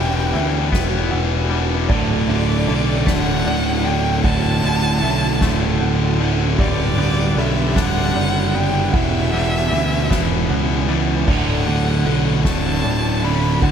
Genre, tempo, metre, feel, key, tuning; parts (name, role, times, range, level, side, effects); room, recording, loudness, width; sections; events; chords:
post-rock; 51 BPM (dotted quarters); 6/8; straight; D major; A4 = 440 Hz
rich violin; melody; 0.0-13.7 s; D5 to B5; -25 LUFS; equal; ping-pong delay
pedal steel guitar; sustained chords; 0.0-13.7 s; D3 to B5; -31 LUFS; right 2 dB
felt-muted upright piano; arpeggios; 0.0-13.7 s; A4 to F#6; -33 LUFS; right 4 dB; ping-pong delay
twangy electric guitar; arpeggios; 0.0-13.7 s; D2 to D4; -29 LUFS; left 4 dB
tight distorted guitar; riff; 0.0-13.7 s; D2 to G3; -23 LUFS; left 12 dB; distortion
fuzz picked electric bass; bass; 0.0-13.7 s; D1 to D2; -21 LUFS; equal; overdrive
soft-mallet drum kit; drums; 0.3-13.7 s; crash cymbal, kick drum, ride cymbal, snare drum; -23 LUFS; right 1 dB
thick fuzz guitar; riff; 1.9-13.7 s; D2 to G3; -22 LUFS; right 9 dB; distortion
light reverb, small room ambience; -16 LUFS; side -8 dB against mid
0.0-13.7 A section
0.0 Em; 1.9 Dadd9; 6.6 Gadd9/D; 8.9 Em; 11.3 Dadd9